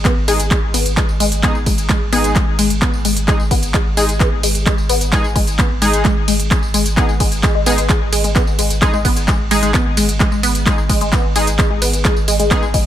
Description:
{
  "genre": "driving peak-time techno",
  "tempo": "130 BPM",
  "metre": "4/4",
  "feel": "straight",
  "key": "G# minor",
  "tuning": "A4 = 440 Hz",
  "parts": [
    { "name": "resonant blip pluck", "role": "riff", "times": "0.0-12.8 s", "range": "G#3 to G#4", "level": "-20 LUFS", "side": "left 1 dB", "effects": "phaser, sidechain pumping, digital delay" },
    { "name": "saturated sub bass", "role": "bass", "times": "0.0-12.9 s", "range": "G#1", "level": "-20 LUFS", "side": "equal", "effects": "overdrive, sidechain pumping, low-pass filter" },
    { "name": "electronic kick drum", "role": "drums", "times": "0.0-12.8 s", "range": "none", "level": "-16 LUFS", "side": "equal", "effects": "overdrive" },
    { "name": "techno drum kit", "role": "drums", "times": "0.1-12.8 s", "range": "handclaps, hi-hat, ride cymbal, tambourine", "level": "-20 LUFS", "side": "equal", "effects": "sidechain pumping on perc, sidechain pumping on hats, sidechain pumping on cymbals" },
    { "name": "sync-sweep polysynth", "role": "stabs", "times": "0.3-12.6 s", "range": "G#3 to G#4", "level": "-23 LUFS", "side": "left 1 dB", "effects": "chorus, sidechain pumping, ping-pong delay" }
  ],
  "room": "light reverb",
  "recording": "none",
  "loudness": "-13 LUFS",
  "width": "side -11 dB against mid",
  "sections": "0.0-12.9 A section",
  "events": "none",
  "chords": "0.0 G#5"
}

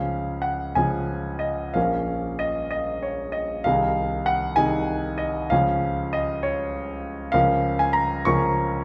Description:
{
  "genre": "classical, romantic character piece for solo piano",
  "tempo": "64 BPM (dotted quarters)",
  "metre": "6/8",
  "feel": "uneven beats, rubato",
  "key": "Db major",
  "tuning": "A4 = 440 Hz",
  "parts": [
    { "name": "clear concert grand piano", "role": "solo", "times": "0.0-8.8 s", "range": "Bb1 to Db6", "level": "-24 LUFS", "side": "equal", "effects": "none" }
  ],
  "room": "moderate recital hall reverb, RT60 1.7 s",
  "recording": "none",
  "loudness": "-24 LUFS",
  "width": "mono",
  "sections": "0.0-8.8 A section",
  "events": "none",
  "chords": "0.0 Db; 1.8 Bbm; 3.7 Ab/C; 5.5 Db; 7.3 Bbm/Db"
}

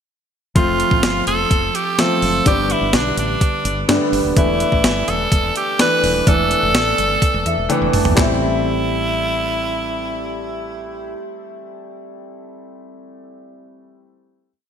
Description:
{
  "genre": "1980s-style pop",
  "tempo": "126 BPM",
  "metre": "4/4",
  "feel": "straight",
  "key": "A minor",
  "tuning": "A4 = 441 Hz",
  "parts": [
    { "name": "raspy tenor saxophone", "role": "melody", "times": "0.6-11.1 s", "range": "D4 to B4", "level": "-20 LUFS", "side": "right 2 dB", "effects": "ping-pong delay" },
    { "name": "warm concert grand piano", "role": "accompaniment", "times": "0.6-14.5 s", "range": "D3 to A5", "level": "-21 LUFS", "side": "left 1 dB", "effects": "lush chorus" },
    { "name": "woody fretless electric bass", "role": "bass", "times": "0.6-11.1 s", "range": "D#1 to G2", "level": "-24 LUFS", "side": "equal", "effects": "none" },
    { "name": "clean 12-bit digital drum machine", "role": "drums", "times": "0.6-8.3 s", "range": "handclaps, hi-hat, kick drum, snare drum, toms", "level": "-19 LUFS", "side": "equal", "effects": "none" }
  ],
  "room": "moderate lush hall reverb, RT60 1.9 s",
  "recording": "bright 1980s-style digital production",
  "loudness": "-15 LUFS",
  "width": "side -8 dB against mid",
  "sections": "0.6-8.2 pre-chorus; 8.2-12.0 final chord",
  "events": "grand piano fill 7.2-8.2; drum fill 7.7-8.2",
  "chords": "0.6 F; 2.5 G; 4.4 E7sus4; 8.2 Am7"
}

